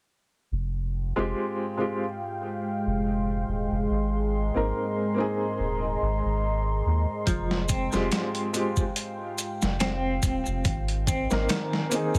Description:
trip hop; 71 BPM; 4/4; swing 55% on 16ths; F minor; A4 = 441 Hz
deep dark ambient pad; sustained chords; 1.6-12.2 s; Ab3 to C6; -33 LUFS; equal; chorus, built-in reverb
soft dub sub bass; bass; 0.5-11.5 s; Eb1 to Eb2; -31 LUFS; equal
felt-muted upright piano; accompaniment; 1.2-12.2 s; Ab3 to Bb4; -32 LUFS; equal; tremolo, tape echo
semi-hollow electric guitar; arpeggios; 7.3-12.2 s; Eb3 to C4; -34 LUFS; equal; tremolo, tape echo
dusty soul sampler-style drum kit; drums; 7.3-12.2 s; hi-hat, kick drum, snare drum; -30 LUFS; equal; overdrive
maracas; percussion; 7.3-12.2 s; -38 LUFS; equal
light reverb, digital ambience; heavily compressed radio sound; -27 LUFS; mono
0.5-12.2 A section
0.5 Fmadd9; 3.9 Abadd9; 7.3 Fmadd9; 10.7 Abadd9
| 0.51 1.36 2.20 3.05 | 3.89 4.74 5.58 6.43 | 7.27 8.12 8.96 9.81 | 10.65 11.50

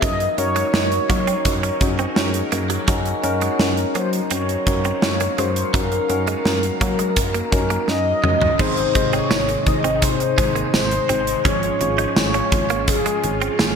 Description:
1980s-style pop; 84 BPM; 4/4; straight; A4 = 442 Hz
mellow horn-like synth lead; melody; 0.0-13.8 s; Ab4 to Eb5; -22 LUFS; left 1 dB; chorus, shimmer reverb, ping-pong delay
tine electric piano; accompaniment; 0.0-13.8 s; Ab2 to Eb5; -26 LUFS; left 3 dB; lush chorus, shimmer reverb
sweeping resonant pad; sustained chords; 0.0-13.8 s; C3 to F5; -29 LUFS; equal; chorus, shimmer reverb
direct-recorded clean electric guitar; riff; 0.0-13.7 s; Gb3 to Eb4; -27 LUFS; right 6 dB; analog chorus, shimmer reverb
solid FM bass; bass; 0.0-13.8 s; Ab1 to Gb3; -25 LUFS; equal
gated 80s drum kit; drums; 0.0-13.8 s; crash cymbal, hi-hat, kick drum, snare drum, tambourine, toms; -21 LUFS; right 1 dB
funky polysynth comp; stabs; 8.6-13.8 s; Eb3 to Ab4; -29 LUFS; right 3 dB; chorus, shimmer reverb
wet lush hall reverb, RT60 2.0 s; bright 1980s-style digital production; -17 LUFS; side -6 dB against mid
0.0-8.6 A section; 8.6-13.8 B section
drum fill 7.9-8.6
0.0 Gb6; 8.6 Ab; 11.5 Db/Ab
| 0.02 0.74 1.45 2.17 | 2.88 3.59 4.31 5.02 | 5.74 6.45 7.17 7.88 | 8.59 9.31 10.02 10.74 | 11.45 12.17 12.88 13.59

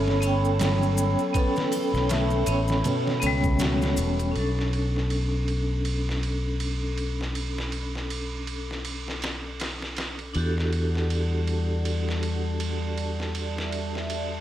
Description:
trip hop; 80 BPM; 4/4; swing 58% on 16ths; B minor; A4 = 441 Hz
vibraphone with hard mallets; accompaniment; 0.0-14.4 s; G3 to G5; -30 LUFS; equal; tremolo, tape echo
warbly tape-like pad; sustained chords; 0.0-14.4 s; G3 to D6; -34 LUFS; equal; chorus, built-in reverb
felt-muted upright piano; arpeggios; 0.0-4.4 s; B2 to F#4; -31 LUFS; right 1 dB; tape echo
fingered electric bass; bass; 0.0-14.4 s; E1 to E2; -27 LUFS; equal
flickering grainy texture; texture; 0.0-4.4 s; A4; -41 LUFS; equal
trip hop sampler-style drum kit; drums; 0.1-14.3 s; kick drum, ride cymbal, snare drum; -32 LUFS; right 1 dB; high-pass filter on cymbals, studio reverb, high-pass filter on kick, high-pass filter on snare
maracas and triangle; percussion; 0.2-4.3 s; -38 LUFS; left 4 dB
light reverb, small room reverb; -24 LUFS; side -12 dB against mid
0.0-4.4 A section; 4.4-14.4 B section
filter sweep on ambient pad 4.4-14.4
0.0 Aadd9; 4.4 Bm7; 10.4 Em11
0.60 | 1.35 2.10 2.85 3.60 | 4.36 5.11 5.86 6.61 | 7.36 8.11 8.86 9.61 | 10.36 11.11 11.86 12.61 | 13.36 14.11

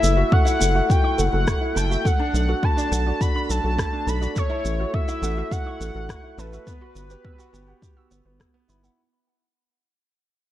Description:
piano and strings electronica; 104 BPM; 4/4; straight; A4 = 440 Hz
warm velvety synth lead; melody; 0.0-8.4 s; B4 to B5; -26 LUFS; left 2 dB; chorus
felt-muted upright piano; riff; 0.0-9.0 s; A3 to G4; -27 LUFS; right 1 dB
round analog bass; bass; 0.0-8.9 s; F#1 to B1; -23 LUFS; equal; sidechain pumping
electronic shaker and rim click; drums; 0.0-9.0 s; -30 LUFS; right 1 dB
warbly dusty pluck; arpeggios; 0.2-9.0 s; A4 to E6; -36 LUFS; right 2 dB; wide subtle chorus, vintage 12-bit sampler grit, sidechain pumping, digital delay
electronic kick drum; drums; 0.3-8.5 s; -22 LUFS; equal
digital ambience; dark, warm production; -20 LUFS; side -13 dB against mid
0.0-9.0 A section
drop 0.0-9.0; fade-out 0.0-9.0
0.0 F#m7; 2.1 Bm7; 4.4 A6; 6.7 Emadd9/G
0.32 0.90 1.48 | 2.05 2.63 3.21 3.78 | 4.36 4.94 5.51 6.09 | 6.67 7.25 7.82 8.40

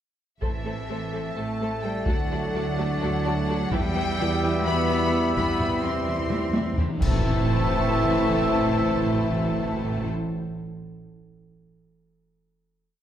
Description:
cinematic, epic orchestral film score; 255 BPM (eighths); 7/8; straight; A dorian; A4 = 440 Hz
warm symphonic violin section; melody; 0.4-10.1 s; E5 to C6; -33 LUFS; left 6 dB
rich symphonic violin section; second line; 0.4-10.1 s; G4 to E5; -36 LUFS; left 4 dB
warm symphonic viola section; accompaniment; 0.4-10.1 s; E3 to A4; -32 LUFS; equal
clear woodwind section; sustained chords; 0.4-10.1 s; G3 to A5; -34 LUFS; equal
mellow French horn section; sustained chords; 0.4-10.1 s; C3 to A4; -32 LUFS; left 2 dB
warm trombone section; sustained chords; 0.4-10.1 s; A2 to A3; -33 LUFS; right 1 dB
mellow trumpet; stabs; 0.4-10.1 s; D5 to E5; -33 LUFS; equal
clear symphonic cello section; bass; 0.4-10.1 s; E3 to C4; -31 LUFS; right 2 dB
rich symphonic double bass section; bass; 0.4-10.1 s; A1 to E2; -30 LUFS; right 3 dB
taiko ensemble; drums; 0.4-7.9 s; -28 LUFS; equal
timpani; percussion; 0.4-1.1, 3.7-10.1 s; E2 to A2; -30 LUFS; right 1 dB
cymbal swell, clash cymbals and concert bass drum; percussion; 3.7-7.9 s; -32 LUFS; equal
wet scoring stage reverb, RT60 1.5 s; -22 LUFS; side -10 dB against mid
0.4-7.0 theme; 7.0-10.3 final chord
timpani fill 5.4-7.0; drum fill 6.3-7.0; band accent 7.0-7.5
0.4 Am; 2.1 D; 3.7 Em; 5.4 C/E; 7.0 Am
| 0.42 0.66 0.89 1.13 1.36 1.60 1.84 | 2.07 2.31 2.54 2.78 3.01 3.25 3.48 | 3.72 3.96 4.19 4.43 4.66 4.90 5.13 | 5.37 5.61 5.84 6.08 6.31 6.55 6.78 | 7.02 7.25 7.49 7.72 7.96 8.19 8.43 | 8.66 8.90 9.13 9.37 9.60 9.84 10.07

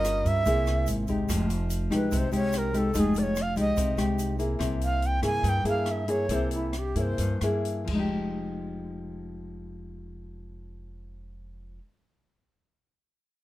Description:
bossa nova; 123-145 BPM; 4/4; straight; F minor; A4 = 439 Hz
breathy bright long shakuhachi; melody; 0.0-7.4 s; E4 to Ab5; -29 LUFS; right 2 dB
nylon-string guitar; accompaniment; 0.0-11.9 s; G2 to Bb4; -29 LUFS; left 2 dB
upright bass; bass; 0.0-11.8 s; F1 to G2; -30 LUFS; equal
open jazz drum kit; drums; 0.0-8.0 s; crash cymbal, hi-hat, kick drum, rim click; -36 LUFS; equal
egg shaker; percussion; 0.1-4.6 s; -42 LUFS; right 11 dB
little or no reverb; -24 LUFS; side -15 dB against mid
0.0-1.3 A section; 1.3-8.1 B section; 8.1-12.0 C section
shakuhachi solo 1.3-8.1; slowing down 4.6-8.1
0.5 C7alt; 1.3 Fm9; 4.6 C7b13; 7.9 Fm9
0.04 0.46 0.87 | 1.28 1.70 2.11 2.53 | 2.94 3.35 3.77 4.18 | 4.60 5.01 5.43 5.86 | 6.29 6.73 7.18 7.65 | 8.13 8.62 9.11 9.59 | 10.08 10.57 11.06 11.54

